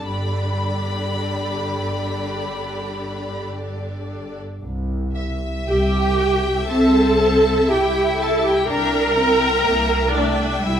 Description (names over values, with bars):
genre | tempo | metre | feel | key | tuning
classical, slow romantic movement for string orchestra | 51-63 BPM | 4/4 | rubato | C major | A4 = 439 Hz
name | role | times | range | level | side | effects
rich studio violin section | melody | 0.0-10.8 s | D5 to B5 | -27 LUFS | left 4 dB | none
rich studio violin section | second line | 0.0-10.8 s | G4 to G5 | -30 LUFS | left 2 dB | none
warm studio double bass section | bass | 0.0-10.8 s | G1 to C2 | -26 LUFS | equal | none
dark studio viola section | accompaniment | 0.1-10.8 s | D3 to Bb4 | -20 LUFS | right 1 dB | none
warm studio cello section | bass | 0.1-10.8 s | G2 to E4 | -24 LUFS | equal | none
room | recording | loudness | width
moderate stone room reverb, RT60 1.1 s | none | -17 LUFS | side -9 dB against mid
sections
0.0-4.6 A section; 4.6-10.8 B section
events
none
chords
0.1 G; 4.6 C; 8.7 C7